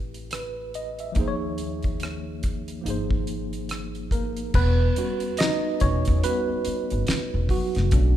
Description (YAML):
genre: R&B, neo-soul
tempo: 71 BPM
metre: 4/4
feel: swing 60% on 16ths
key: unclear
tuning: A4 = 440 Hz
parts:
  - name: tine electric piano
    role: accompaniment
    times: 0.0-8.2 s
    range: F3 to E5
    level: -27 LUFS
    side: right 1 dB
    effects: overdrive, fast stereo tremolo
  - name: upright bass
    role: bass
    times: 0.0-8.2 s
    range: E1 to E2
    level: -26 LUFS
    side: equal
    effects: none
  - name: damped 70s drum kit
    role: drums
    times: 0.1-8.2 s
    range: crash cymbal, finger snaps, hi-hat, kick drum, rim click, snare drum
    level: -26 LUFS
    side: equal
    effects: none
room: light reverb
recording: none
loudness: -23 LUFS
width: side -12 dB against mid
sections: 0.0-4.5 A section; 4.5-8.2 B section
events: tine electric piano solo 4.5-8.2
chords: 0.0 Am9; 1.2 D#5; 2.9 G#69; 4.5 Em69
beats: 0.32 | 1.16 2.01 2.85 3.70 | 4.54 5.39 6.23 7.08 | 7.92